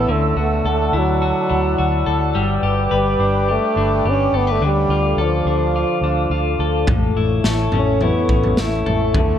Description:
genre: dream pop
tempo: 106 BPM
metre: 4/4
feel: straight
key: A mixolydian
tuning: A4 = 440 Hz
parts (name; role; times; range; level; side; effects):
- clear French horn; melody; 0.0-9.4 s; F3 to C#4; -21 LUFS; right 2 dB; tape echo
- warbly tape-like pad; sustained chords; 0.0-9.4 s; A4 to E6; -22 LUFS; left 2 dB; chorus, built-in reverb
- clean electric guitar; arpeggios; 0.0-9.4 s; A2 to B4; -23 LUFS; left 5 dB; wide subtle chorus, tape echo
- vintage muted fingered electric bass; bass; 0.0-9.4 s; G1 to D2; -21 LUFS; equal; none
- raw garage drum kit; drums; 6.9-9.3 s; kick drum, snare drum, toms; -19 LUFS; equal; none
room: moderate recital hall reverb, RT60 1.6 s, small room ambience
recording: none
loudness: -15 LUFS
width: side -9 dB against mid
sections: 0.0-9.4 A section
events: none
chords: 0.1 Dadd9; 2.4 G; 4.6 Dm; 6.9 A

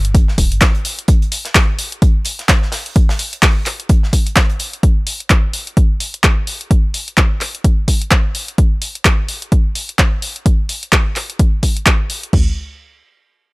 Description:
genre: piano house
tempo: 128 BPM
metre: 4/4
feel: swing 58% on 16ths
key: unclear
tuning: A4 = 441 Hz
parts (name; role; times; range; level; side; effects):
- organ-like FM bass; bass; 0.0-0.6 s; D1 to G1; -17 LUFS; equal; sidechain pumping
- punchy analog drum machine; drums; 0.0-12.3 s; handclaps, hi-hat; -17 LUFS; equal; overdrive
- modern studio drum kit; drums; 0.1-4.7 s; hi-hat, snare drum; -29 LUFS; right 2 dB; sidechain pumping on hats, high-pass filter on hats, high-pass filter on snare, high-pass filter on room
- punchy analog drum machine; drums; 0.1-12.5 s; crash cymbal, kick drum, toms; -12 LUFS; equal; overdrive
room: small room ambience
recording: dry, gritty hardware recording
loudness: -13 LUFS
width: side -24 dB against mid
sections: 0.0-12.3 A section; 12.3-13.5 B section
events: none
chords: none

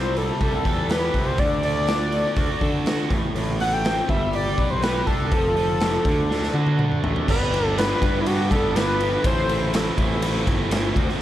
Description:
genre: indie rock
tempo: 122 BPM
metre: 4/4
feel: straight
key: unclear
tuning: A4 = 440 Hz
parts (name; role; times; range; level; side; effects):
- wide unison lead; melody; 0.0-9.7 s; E4 to G5; -24 LUFS; equal; slapback echo
- cranked stack guitar; riff; 0.0-11.2 s; G2 to B4; -27 LUFS; right 1 dB; overdrive
- fuzz picked electric bass; bass; 0.0-11.1 s; F1 to D3; -26 LUFS; equal; overdrive
- raw garage drum kit; drums; 0.2-11.2 s; crash cymbal, hi-hat, kick drum, ride cymbal, snare drum, toms; -24 LUFS; equal; none
room: light reverb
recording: dark, warm production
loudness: -19 LUFS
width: side -13 dB against mid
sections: 0.0-7.3 A section; 7.3-11.2 B section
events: drum fill 6.3-7.3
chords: 0.0 C6; 1.4 D; 3.1 Am; 4.1 G; 5.3 F; 6.1 D; 7.3 G; 9.2 Am7

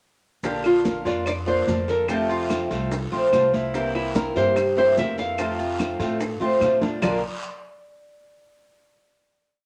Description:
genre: latin, Cuban son and guajira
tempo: 146 BPM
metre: 4/4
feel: straight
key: Bb major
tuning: A4 = 441 Hz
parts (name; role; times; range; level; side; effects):
- picked old ladder-braced acoustic guitar; accompaniment; 0.4-7.2 s; Bb2 to F4; -30 LUFS; equal; none
- Cuban tres; arpeggios; 0.4-7.2 s; Bb3 to E5; -28 LUFS; equal; none
- upright bass; bass; 0.4-7.2 s; Bb1 to Bb2; -35 LUFS; equal; none
- bongos; percussion; 0.4-7.1 s; none; -35 LUFS; equal; none
- congas; percussion; 0.4-7.1 s; none; -32 LUFS; equal; none
- guiro; percussion; 0.4-7.1 s; none; -42 LUFS; equal; none
- maracas; percussion; 0.4-7.1 s; none; -50 LUFS; equal; none
- nylon-string guitar; melody; 0.5-7.2 s; E4 to F5; -26 LUFS; equal; none
- claves; percussion; 0.6-7.1 s; none; -39 LUFS; equal; none
room: moderate studio reverb, RT60 0.8 s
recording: none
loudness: -23 LUFS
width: mono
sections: 0.4-7.0 verse; 7.0-8.7 final chord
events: drum fill 6.8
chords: 0.4 Bb; 2.1 F; 3.7 C7; 5.4 F; 7.0 Bb

